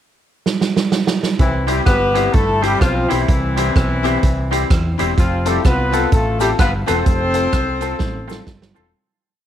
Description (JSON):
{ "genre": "ska", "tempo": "127 BPM", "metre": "4/4", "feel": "swing 61% on 8ths", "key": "C major", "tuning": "A4 = 441 Hz", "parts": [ { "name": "swinging big-band drum kit", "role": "drums", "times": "0.5-8.8 s", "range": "hi-hat, kick drum, rim click, snare drum", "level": "-18 LUFS", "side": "right 2 dB", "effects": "none" }, { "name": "mellow horn section", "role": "melody", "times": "1.4-8.7 s", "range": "E3 to C5", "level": "-19 LUFS", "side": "left 1 dB", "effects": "none" }, { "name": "fingered electric bass", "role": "bass", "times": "1.4-8.9 s", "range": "E1 to E2", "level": "-21 LUFS", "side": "equal", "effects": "none" }, { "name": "twangy electric guitar", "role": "accompaniment", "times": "1.7-8.9 s", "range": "G3 to C5", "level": "-26 LUFS", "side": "right 10 dB", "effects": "slapback echo" }, { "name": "bright upright piano", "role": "stabs", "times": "1.7-8.9 s", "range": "C4 to A4", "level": "-23 LUFS", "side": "left 12 dB", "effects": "none" }, { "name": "cabasa", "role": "percussion", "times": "5.2-8.8 s", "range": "none", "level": "-40 LUFS", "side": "left 17 dB", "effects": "none" } ], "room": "moderate spring reverb, RT60 1.4 s", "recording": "1960s-style stereo with parts hard left and right", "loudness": "-14 LUFS", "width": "side -10 dB against mid", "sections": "0.0-1.4 pickup bar; 1.4-8.9 head", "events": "drum fill 0.5-1.4, 8.0-8.9; fade-out 7.1-8.9", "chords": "0.0 N.C.; 1.4 C; 5.2 F", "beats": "0.45 0.93 | 1.40 1.87 2.34 2.81 | 3.29 3.76 4.23 4.70 | 5.17 5.65 6.12 6.59 | 7.06 7.53 8.00 8.47" }